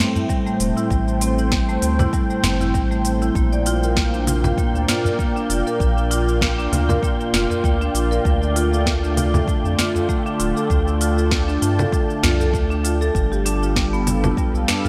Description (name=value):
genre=organic downtempo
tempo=98 BPM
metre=4/4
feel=swing 55% on 16ths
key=unclear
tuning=A4 = 439 Hz
part: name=warm analog pad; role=sustained chords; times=0.0-14.9 s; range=A2 to A5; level=-28 LUFS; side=equal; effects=chorus, sidechain pumping, shimmer reverb
part: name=marimba with medium mallets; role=arpeggios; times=0.0-14.9 s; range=G3 to D5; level=-25 LUFS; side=equal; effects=delay, shimmer reverb
part: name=wind-like tuned noise texture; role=texture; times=0.1-14.9 s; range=G5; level=-36 LUFS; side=equal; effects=built-in reverb, analog chorus, shimmer reverb
part: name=afro-pop drum kit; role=drums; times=0.2-14.9 s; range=congas, hi-hat, shaker, snare drum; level=-26 LUFS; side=equal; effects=studio reverb
part: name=udu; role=percussion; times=0.2-14.9 s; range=none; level=-28 LUFS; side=equal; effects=none
part: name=electronic kick drum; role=drums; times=0.3-14.5 s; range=none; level=-24 LUFS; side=equal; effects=studio reverb
part: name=round analog bass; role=bass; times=0.6-14.7 s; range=D1 to G2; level=-24 LUFS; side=equal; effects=sidechain pumping
room=light reverb, digital ambience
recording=bright 1980s-style digital production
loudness=-19 LUFS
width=mono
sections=0.0-14.9 A section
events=none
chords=0.0 Am7; 3.4 Bb; 8.3 Dm; 13.1 G7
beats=0.29 | 0.91 1.52 2.13 2.74 | 3.35 3.97 4.58 5.19 | 5.80 6.42 7.03 7.64 | 8.25 8.86 9.48 10.09 | 10.70 11.31 11.93 12.54 | 13.15 13.76 14.37